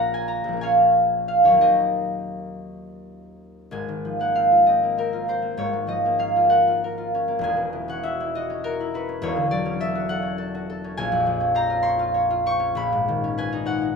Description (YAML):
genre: classical, solo harp piece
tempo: 52-70 BPM (dotted quarters)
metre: 6/8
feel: rubato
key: unclear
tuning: A4 = 440 Hz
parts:
  - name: concert harp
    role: solo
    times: 0.0-14.0 s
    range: E1 to Db6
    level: -20 LUFS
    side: equal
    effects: none
room: moderate recital hall reverb, RT60 1.7 s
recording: minimal, uncompressed stereo recording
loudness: -19 LUFS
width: side -5 dB against mid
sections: 0.0-3.7 A section; 3.7-14.0 B section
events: none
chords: 0.0 Bbm7; 1.6 Ebm6; 3.7 Ab69; 5.6 Gbmaj7/Ab; 7.4 E69; 9.2 Dmaj7/Fb; 11.0 Bbm9; 12.8 Db9sus4/Bb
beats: 0.61 | 1.62 2.63 | 3.73 4.68 | 5.60 6.53 | 7.42 8.32 | 9.22 10.12 | 10.99 11.87 | 12.75 13.64